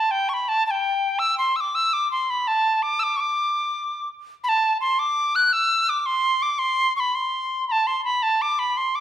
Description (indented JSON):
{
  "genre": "celtic folk",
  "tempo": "111 BPM (dotted quarters)",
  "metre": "9/8",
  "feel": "straight",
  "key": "D mixolydian",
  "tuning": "A4 = 441 Hz",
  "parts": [
    { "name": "bright reedy wooden whistle", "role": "solo", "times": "0.0-9.0 s", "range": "G5 to F#6", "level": "-20 LUFS", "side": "equal", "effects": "none" }
  ],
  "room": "moderate recital hall reverb, RT60 1.7 s",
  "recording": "recorded in a church or concert hall",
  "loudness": "-20 LUFS",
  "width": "side -11 dB against mid",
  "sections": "0.0-4.4 A section; 4.4-9.0 B section",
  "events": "none",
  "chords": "none"
}